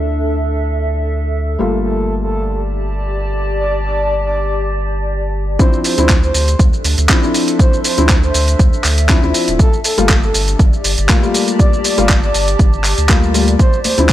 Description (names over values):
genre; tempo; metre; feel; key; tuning
deep house; 120 BPM; 4/4; swing 54% on 16ths; D minor; A4 = 440 Hz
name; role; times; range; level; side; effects
felt-muted upright piano; stabs; 0.0-14.1 s; F3 to F4; -18 LUFS; left 3 dB; sidechain pumping, tape echo
warm sub bass; bass; 0.0-14.1 s; D1 to D2; -17 LUFS; equal; sidechain pumping
warbly tape-like pad; texture; 0.0-14.1 s; D4 to A5; -23 LUFS; left 1 dB; chorus, built-in reverb, phaser, sidechain pumping
breathy flute-like synth lead; melody; 1.6-14.1 s; A4 to D5; -22 LUFS; right 1 dB; chorus, tremolo, cassette tape, analog delay
dusty soul sampler-style drum kit; drums; 5.6-14.1 s; handclaps, hi-hat, shaker; -17 LUFS; right 1 dB; overdrive
electronic kick drum; drums; 5.6-14.1 s; none; -12 LUFS; equal; overdrive
bongos and congas; percussion; 13.8-14.1 s; none; -23 LUFS; left 3 dB; sidechain pumping on perc
room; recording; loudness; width
digital ambience; none; -12 LUFS; side -13 dB against mid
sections
0.0-5.6 A section; 5.6-14.1 B section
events
filter sweep on felt piano 0.0-5.6; drop 5.6-14.1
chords
0.0 Dm9; 1.6 Gm9; 5.6 Dm9; 9.6 Gm9; 13.6 Dm9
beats
0.09 0.59 1.09 | 1.59 2.09 2.59 3.09 | 3.59 4.09 4.59 5.09 | 5.59 6.09 6.59 7.09 | 7.59 8.09 8.59 9.09 | 9.59 10.09 10.59 11.09 | 11.59 12.09 12.59 13.09 | 13.59 14.09